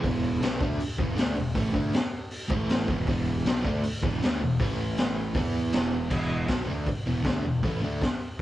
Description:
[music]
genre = garage rock duo or trio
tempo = 158 BPM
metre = 4/4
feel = straight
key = unclear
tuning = A4 = 439 Hz
[part]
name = crunchy overdriven guitar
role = riff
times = 0.0-8.0 s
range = E2 to E4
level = -28 LUFS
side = right 1 dB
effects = tremolo
[part]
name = fuzz picked electric bass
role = bass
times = 0.0-8.0 s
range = E1 to E2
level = -34 LUFS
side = equal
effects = overdrive
[part]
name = raw garage drum kit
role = drums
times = 0.0-8.4 s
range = crash cymbal, hi-hat, kick drum, snare drum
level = -28 LUFS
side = equal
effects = vintage 12-bit sampler grit
[sound]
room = moderate large studio reverb, RT60 1.0 s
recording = band playing live in one room, cassette tape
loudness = -25 LUFS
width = side -14 dB against mid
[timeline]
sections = 0.0-6.1 A section; 6.1-8.4 B section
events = none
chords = 0.0 E5; 2.5 A5; 2.9 E5; 4.6 A5; 5.4 E5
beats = | 0.04 0.42 0.80 1.18 | 1.56 1.94 2.32 2.70 | 3.08 3.46 3.84 4.22 | 4.60 4.98 5.36 5.74 | 6.12 6.50 6.88 7.26 | 7.64 8.03 8.41

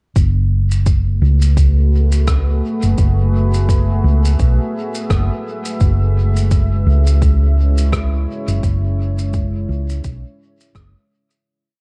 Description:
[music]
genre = ambient dub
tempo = 85 BPM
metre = 4/4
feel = swing 57% on 16ths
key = F# minor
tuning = A4 = 445 Hz
[part]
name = deep dark ambient pad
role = sustained chords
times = 0.9-11.5 s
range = G#3 to E5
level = -26 LUFS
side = equal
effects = chorus, built-in reverb
[part]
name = hollow-body short-scale fingered electric bass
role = bass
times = 0.2-10.9 s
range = F#1 to C#2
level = -16 LUFS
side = equal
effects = none
[part]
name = electronic kick drum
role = drums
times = 0.2-10.9 s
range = none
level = -19 LUFS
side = equal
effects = none
[part]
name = shaker and rim click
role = drums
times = 0.2-11.4 s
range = none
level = -32 LUFS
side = equal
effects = dub echo
[sound]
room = small room reverb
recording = dark, warm production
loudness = -16 LUFS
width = mono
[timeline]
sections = 0.2-11.5 groove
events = fade-out 7.7-11.5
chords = 0.2 F#m11; 5.8 C#m/F#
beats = | 0.16 0.86 1.57 2.28 | 2.98 3.69 4.39 5.10 | 5.81 6.51 7.22 7.92 | 8.63 9.34 10.04 10.75

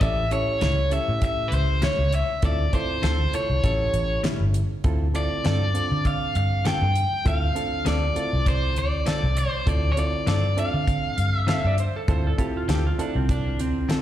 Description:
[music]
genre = straight-eighth soul blues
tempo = 99 BPM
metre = 4/4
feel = swing 54% on 16ths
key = D minor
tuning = A4 = 440 Hz
[part]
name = overdriven electric guitar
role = melody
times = 0.0-11.8 s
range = B4 to G5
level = -26 LUFS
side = equal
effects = slapback echo
[part]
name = overdriven reed electric piano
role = accompaniment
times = 0.0-13.9 s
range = C3 to A4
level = -32 LUFS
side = right 2 dB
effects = slapback echo
[part]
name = vintage muted fingered electric bass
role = bass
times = 0.0-13.8 s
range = G1 to D3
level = -23 LUFS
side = equal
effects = none
[part]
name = damped 70s drum kit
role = drums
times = 0.0-14.0 s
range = hi-hat, kick drum, snare drum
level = -26 LUFS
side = equal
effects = none
[part]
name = direct-recorded clean electric guitar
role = stabs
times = 0.6-14.0 s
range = A2 to A4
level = -30 LUFS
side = left 7 dB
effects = slapback echo
[part]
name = electric slide guitar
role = second line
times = 11.5-14.0 s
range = C4 to F5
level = -29 LUFS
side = right 3 dB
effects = slapback echo, analog delay
[sound]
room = light reverb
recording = live gig heard through the venue's PA, recital hall reverb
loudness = -21 LUFS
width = side -12 dB against mid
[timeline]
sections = 0.0-4.8 A section; 4.8-14.0 A section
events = none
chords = 0.0 A7; 2.4 Dm7; 3.6 A7; 4.8 Dm7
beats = | 0.01 0.62 1.22 1.82 | 2.43 3.03 3.63 4.24 | 4.84 5.45 6.05 6.65 | 7.25 7.86 8.46 9.06 | 9.67 10.27 10.88 11.48 | 12.08 12.69 13.29 13.90

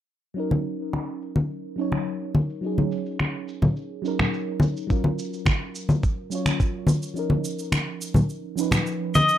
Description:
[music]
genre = sunset chillout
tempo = 106 BPM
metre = 4/4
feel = straight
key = Eb minor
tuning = A4 = 440 Hz
[part]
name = mellow FM electric piano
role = accompaniment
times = 0.3-9.4 s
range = F3 to Db5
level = -29 LUFS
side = moving between left 3 dB and right 3 dB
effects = chorus, phaser, auto-pan, low-pass filter, tape echo
[part]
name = electronic shaker and finger snaps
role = drums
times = 0.4-9.4 s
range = none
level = -31 LUFS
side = right 2 dB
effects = low-pass filter on perc, low-pass filter on snare, low-pass filter on room
[part]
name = congas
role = percussion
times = 0.5-9.3 s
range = none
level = -21 LUFS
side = left 1 dB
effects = none
[part]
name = electronic kick drum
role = drums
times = 4.9-6.7 s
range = none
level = -22 LUFS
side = right 1 dB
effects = none
[part]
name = pedal steel guitar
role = melody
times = 9.2-9.4 s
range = Eb5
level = -17 LUFS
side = left 2 dB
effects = none
[sound]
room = light reverb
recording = rough home demo mix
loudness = -22 LUFS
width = side -11 dB against mid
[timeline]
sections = 0.4-9.4 A section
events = filter sweep on drum 0.4-9.4; kick drops out 7.2-9.4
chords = 0.4 Ebm7; 4.9 Gbmaj7; 7.2 Db9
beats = | 0.37 0.93 1.50 2.07 | 2.63 3.20 3.76 4.33 | 4.90 5.46 6.03 6.59 | 7.16 7.73 8.29 8.86

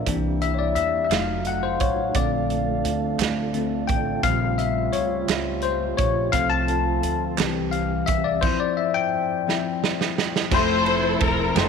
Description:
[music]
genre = slow gospel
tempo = 57 BPM (dotted quarters)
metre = 6/8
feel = straight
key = F major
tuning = A4 = 439 Hz
[part]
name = bell-like tine electric piano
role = accompaniment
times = 0.0-11.7 s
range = Db3 to A5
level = -23 LUFS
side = left 9 dB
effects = lush chorus
[part]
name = mellow tonewheel organ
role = sustained chords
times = 0.0-11.7 s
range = Db3 to A5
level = -33 LUFS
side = right 14 dB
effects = fast rotary speaker, chorus vibrato
[part]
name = warm French horn section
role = sustained chords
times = 0.0-8.4 s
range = Db3 to F5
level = -31 LUFS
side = right 10 dB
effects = none
[part]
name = upright bass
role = bass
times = 0.0-11.7 s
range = E1 to E2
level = -29 LUFS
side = right 2 dB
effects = none
[part]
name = natural country drum kit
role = drums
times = 0.1-11.7 s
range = crash cymbal, hi-hat, kick drum, ride cymbal, snare drum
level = -25 LUFS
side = right 6 dB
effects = none
[part]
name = group handclap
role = percussion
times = 1.1-7.7 s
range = none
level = -32 LUFS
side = right 15 dB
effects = none
[part]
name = warm symphonic string section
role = melody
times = 10.5-11.7 s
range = C4 to C5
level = -21 LUFS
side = left 1 dB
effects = none
[sound]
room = light reverb, small room ambience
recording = 1960s-style stereo with parts hard left and right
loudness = -20 LUFS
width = side -6 dB against mid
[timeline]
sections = 0.0-10.5 A section; 10.5-11.7 B section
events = tine electric piano solo 0.0-10.5; drum fill 9.5-10.5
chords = 0.1 C7; 1.1 F7b9; 2.2 Bbmaj7; 4.2 Bbm6; 6.3 F/C; 7.4 C; 8.4 Dm11/F; 10.5 Fmaj7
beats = | 0.06 1.10 | 2.15 3.20 | 4.24 5.29 | 6.33 7.38 | 8.42 9.47 | 10.51 11.56

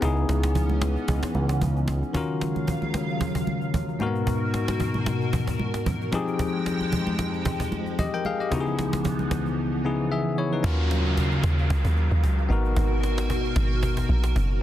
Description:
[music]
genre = amapiano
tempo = 113 BPM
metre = 4/4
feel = swing 55% on 16ths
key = unclear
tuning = A4 = 440 Hz
[part]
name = bell-like tine electric piano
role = accompaniment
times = 0.0-14.6 s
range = Ab2 to G5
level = -28 LUFS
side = left 4 dB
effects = none
[part]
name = hollow soft pad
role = sustained chords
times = 0.0-14.6 s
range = Db2 to G5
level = -30 LUFS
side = right 1 dB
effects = ensemble chorus, phaser
[part]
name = fat analog bass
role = bass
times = 0.0-2.0 s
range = Db2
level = -24 LUFS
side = equal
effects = none
[part]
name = cajon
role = drums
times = 0.0-14.6 s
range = none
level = -31 LUFS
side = equal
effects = none
[part]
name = congas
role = percussion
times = 0.3-9.4 s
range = none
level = -32 LUFS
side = right 2 dB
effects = none
[part]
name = deep log drum bass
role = bass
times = 10.6-14.6 s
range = Gb1 to Eb2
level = -22 LUFS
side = equal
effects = none
[part]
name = downlifter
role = sound effects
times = 10.6-14.6 s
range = none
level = -34 LUFS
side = equal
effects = none
[sound]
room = little or no reverb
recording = dense, heavily limited modern master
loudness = -22 LUFS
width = side -12 dB against mid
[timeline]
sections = 0.0-10.6 A section; 10.6-14.6 B section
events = drop 10.6-14.6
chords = 0.0 Dbm9; 2.1 Ebm9; 4.0 Abm9; 6.1 Fm9; 8.5 Dbm9; 10.6 Ebm9; 12.5 Abm9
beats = | 0.02 0.55 1.08 1.61 | 2.15 2.68 3.21 3.74 | 4.27 4.80 5.33 5.86 | 6.39 6.92 7.46 7.99 | 8.52 9.05 9.58 10.11 | 10.64 11.17 11.70 12.23 | 12.76 13.29 13.83 14.36

